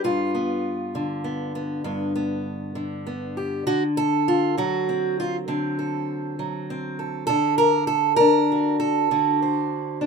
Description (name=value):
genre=acoustic country blues, solo or duo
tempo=66 BPM (dotted quarters)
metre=12/8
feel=straight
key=unclear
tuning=A4 = 442 Hz
part: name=fingerpicked steel-string acoustic guitar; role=solo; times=0.0-10.1 s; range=G2 to C5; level=-21 LUFS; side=right 1 dB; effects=none
room=moderate booth ambience, RT60 0.2 s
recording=minimal, uncompressed stereo recording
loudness=-21 LUFS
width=side -5 dB against mid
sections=0.0-10.1 A section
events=none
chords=0.0 G7; 3.7 D7